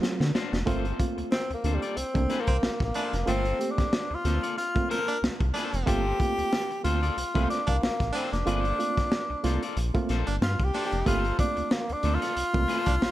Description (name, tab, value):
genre	funk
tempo	92 BPM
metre	4/4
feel	swing 56% on 16ths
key	G minor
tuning	A4 = 440 Hz
part	reed electric piano	stabs	0.0-13.1 s	F#3 to G4	-33 LUFS	right 3 dB	fast tremolo, tape echo
part	crunchy breakbeat drum kit	drums	0.0-13.1 s	hi-hat, kick drum, snare drum	-29 LUFS	equal	none
part	electric guitar at the edge of break-up	accompaniment	0.2-12.9 s	Bb3 to E#5	-37 LUFS	left 6 dB	none
part	round analog bass	bass	0.2-13.1 s	E#1 to D3	-28 LUFS	equal	none
part	warm tenor saxophone	melody	1.3-13.1 s	G3 to Bb4	-29 LUFS	left 1 dB	none
part	bright baritone saxophone	second line	2.5-13.0 s	C4 to D4	-36 LUFS	right 3 dB	none
room	light reverb, small room reverb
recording	none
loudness	-24 LUFS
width	side -14 dB against mid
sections	0.7-13.1 A section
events	drum fill 0.0-0.7; tenor saxophone solo 0.7-13.1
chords	0.0 D7#9; 0.7 Gm11